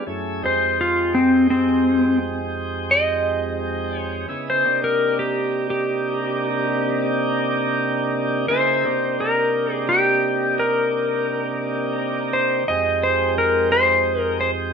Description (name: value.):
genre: blues.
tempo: 57 BPM (dotted quarters).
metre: 12/8.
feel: straight.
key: C minor.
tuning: A4 = 439 Hz.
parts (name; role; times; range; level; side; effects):
clean lap steel guitar; melody; 0.0-14.5 s; C4 to Eb5; -19 LUFS; left 1 dB; none.
tonewheel organ; sustained chords; 0.0-14.7 s; F2 to Ab4; -23 LUFS; right 1 dB; slow rotary speaker.
room: wet studio reverb, RT60 0.7 s.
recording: band playing live in one room.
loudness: -18 LUFS.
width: side -6 dB against mid.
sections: 0.0-8.5 A section; 8.5-14.7 B section.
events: electric slide guitar solo 0.0-8.5.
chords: 0.1 Fm7; 4.3 Cm7; 12.7 Fm7.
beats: | 0.08 1.14 2.19 3.25 | 4.30 5.35 6.40 7.45 | 8.50 9.55 10.59 11.64 | 12.68 13.72.